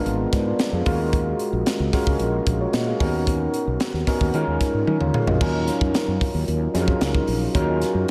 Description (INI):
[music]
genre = polished 1980s jazz-funk pop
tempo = 112 BPM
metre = 4/4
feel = straight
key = unclear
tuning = A4 = 444 Hz
[part]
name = overdriven tine electric piano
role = accompaniment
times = 0.0-8.1 s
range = F#3 to E#5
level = -25 LUFS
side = equal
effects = analog chorus, slapback echo
[part]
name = mellow fretless electric bass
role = bass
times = 0.0-8.0 s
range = G#1 to D#3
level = -27 LUFS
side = equal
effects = none
[part]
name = crisp fusion drum kit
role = drums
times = 0.1-8.1 s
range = crash cymbal, hi-hat, kick drum, snare drum, toms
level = -26 LUFS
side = equal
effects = none
[sound]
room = moderate scoring stage reverb, RT60 1.8 s, small room ambience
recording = big arena sound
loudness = -22 LUFS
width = mono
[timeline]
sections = 0.0-5.4 A section; 5.4-8.1 B section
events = drum fill 4.9-5.4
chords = 0.0 A#7b9; 0.9 D#m11; 3.0 Bmaj9/D#; 4.3 D#7sus4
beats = 0.06 0.60 | 1.13 1.67 2.20 2.74 | 3.27 3.81 4.34 4.88 | 5.41 5.95 6.48 7.01 | 7.55 8.08